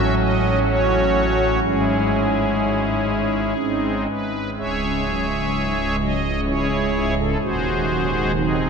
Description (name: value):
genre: classical, chorale-style piece for pipe organ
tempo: 63 BPM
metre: 3/4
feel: rubato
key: C# minor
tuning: A4 = 440 Hz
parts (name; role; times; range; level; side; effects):
- pipe organ, strings celeste; solo; 0.0-8.7 s; C#1 to E5; -18 LUFS; equal; none
room: wet cathedral reverb, RT60 6.2 s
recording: none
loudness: -18 LUFS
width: side -6 dB against mid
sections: 0.0-4.6 A section; 4.6-8.7 B section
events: none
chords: 0.0 F#m/A; 1.6 C#m/G#; 3.6 G#; 4.6 C#m; 7.4 G#7/D#